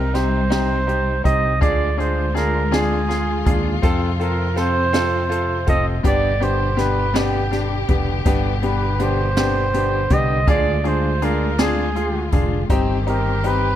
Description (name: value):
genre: six-eight pop ballad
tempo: 54 BPM (dotted quarters)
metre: 6/8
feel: straight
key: C minor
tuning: A4 = 441 Hz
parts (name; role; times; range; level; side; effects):
- warm flugelhorn; melody; 0.0-13.8 s; G4 to Eb5; -23 LUFS; right 3 dB; tape echo
- clear concert grand piano; accompaniment; 0.0-13.7 s; B3 to A4; -23 LUFS; left 2 dB; none
- warm studio string section; sustained chords; 0.0-13.8 s; B2 to G4; -27 LUFS; left 2 dB; none
- fingered electric bass; bass; 0.0-13.8 s; F1 to F2; -22 LUFS; equal; none
- jazz brush drum kit; drums; 0.1-13.6 s; hi-hat, kick drum, snare drum; -22 LUFS; equal; none
room: light reverb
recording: none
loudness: -17 LUFS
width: side -11 dB against mid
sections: 0.0-13.8 A section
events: none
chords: 0.0 Cm; 1.6 Ddim; 3.8 F; 6.0 G; 10.5 Ddim; 12.7 Cm/G